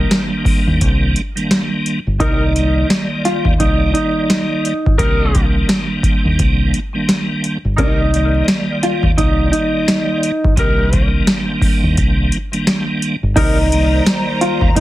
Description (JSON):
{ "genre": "hip hop, boom-bap hip-hop", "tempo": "86 BPM", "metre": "4/4", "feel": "swing 60% on 16ths", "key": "C minor", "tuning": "A4 = 441 Hz", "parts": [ { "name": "tonewheel organ", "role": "accompaniment", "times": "0.0-14.8 s", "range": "C2 to D5", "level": "-20 LUFS", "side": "right 1 dB", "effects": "chorus vibrato, slow rotary speaker, cassette tape, high-pass filter, low-pass filter" }, { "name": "deep dub fingered electric bass", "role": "bass", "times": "0.0-14.8 s", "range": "G1 to Eb2", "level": "-17 LUFS", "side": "equal", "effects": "none" }, { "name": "booming analog drum machine", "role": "drums", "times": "0.1-14.8 s", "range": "crash cymbal, hi-hat, kick drum, snare drum", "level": "-16 LUFS", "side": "equal", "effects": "overdrive" }, { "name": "mellow electric guitar", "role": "melody", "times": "2.2-14.8 s", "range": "Eb4 to F4", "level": "-18 LUFS", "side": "equal", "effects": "spring reverb, high-pass filter, low-pass filter" }, { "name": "bright saxophone section", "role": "stabs", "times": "2.2-13.6 s", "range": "G3 to Bb4", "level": "-24 LUFS", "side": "left 2 dB", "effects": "high-pass filter, low-pass filter, ping-pong delay" }, { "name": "warm studio string section", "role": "sustained chords", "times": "13.4-14.8 s", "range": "Eb3 to Bb5", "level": "-24 LUFS", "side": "equal", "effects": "high-pass filter, low-pass filter" } ], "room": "light reverb", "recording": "heavily compressed radio sound, vinyl crackle", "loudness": "-13 LUFS", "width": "side -16 dB against mid", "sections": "0.0-13.4 A section; 13.4-14.8 B section", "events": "none", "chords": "0.0 Cm7" }